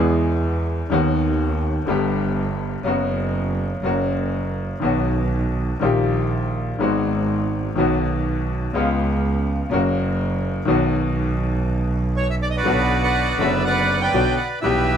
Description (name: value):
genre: tango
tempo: 123 BPM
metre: 4/4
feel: rubato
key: B major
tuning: A4 = 440 Hz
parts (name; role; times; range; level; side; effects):
- bright upright piano; accompaniment; 0.0-15.0 s; F#1 to G#4; -22 LUFS; left 2 dB; none
- clear double bass; bass; 0.0-15.0 s; F#1 to E2; -23 LUFS; right 2 dB; none
- bandoneon; melody; 12.2-15.0 s; F#4 to G5; -20 LUFS; right 2 dB; plate reverb
room: moderate studio reverb, RT60 0.6 s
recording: none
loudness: -19 LUFS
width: side -8 dB against mid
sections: 0.0-12.7 A section; 12.7-15.0 B section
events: none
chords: 0.0 E; 0.9 B/D#; 1.9 G; 2.8 F#sus4; 3.8 F#; 4.8 B; 5.8 D#/A#; 6.8 G#m7; 7.8 B; 8.7 C#7; 9.7 F#; 10.7 B; 12.7 Bm